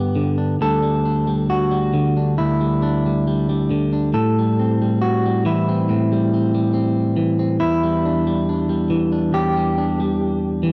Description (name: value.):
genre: folk, solo fingerstyle acoustic guitar.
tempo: 69 BPM.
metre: 4/4.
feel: rubato.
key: D mixolydian.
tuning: A4 = 440 Hz.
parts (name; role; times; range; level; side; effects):
clean electric guitar; solo; 0.0-10.7 s; D2 to A4; -19 LUFS; equal; none.
room: light reverb.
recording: home recording on cassette.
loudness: -19 LUFS.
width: mono.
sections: 0.0-10.7 A section.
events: none.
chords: 0.0 G; 0.6 Dsus4; 4.2 Am7; 7.6 Em7.